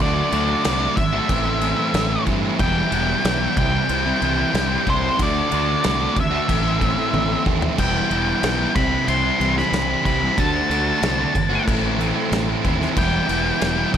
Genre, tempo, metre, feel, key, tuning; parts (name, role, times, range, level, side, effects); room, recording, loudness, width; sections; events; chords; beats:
quiet-loud alternative rock; 92 BPM; 4/4; straight; E minor; A4 = 440 Hz
octave-fuzz lead guitar; melody; 0.0-14.0 s; C5 to C6; -23 LUFS; left 1 dB; distortion, digital delay
clear studio string section; sustained chords; 0.0-14.0 s; G3 to D6; -34 LUFS; left 1 dB
sludgy distorted guitar; riff; 0.0-14.0 s; A2 to F#4; -26 LUFS; left 11 dB; overdrive
thick fuzz guitar; riff; 0.0-14.0 s; A2 to F#4; -24 LUFS; right 10 dB; distortion
fuzz fingered electric bass; bass; 0.0-14.0 s; E1 to G2; -25 LUFS; equal; overdrive
loose indie drum kit; drums; 0.0-14.0 s; crash cymbal, kick drum, snare drum, toms; -24 LUFS; left 1 dB
studio reverb; -17 LUFS; side -9 dB against mid
0.0-14.0 A section
drum fill 7.1-7.8
0.0 D5; 1.3 Am; 2.6 Em7; 3.6 C; 5.2 D7sus4; 6.5 Am; 7.8 Em7; 8.8 C; 10.4 D7sus4; 11.7 Am; 13.0 Em7
| 0.00 0.65 1.30 1.95 | 2.59 3.24 3.89 4.54 | 5.19 5.84 6.49 7.14 | 7.79 8.44 9.08 9.73 | 10.38 11.03 11.68 12.32 | 12.97 13.62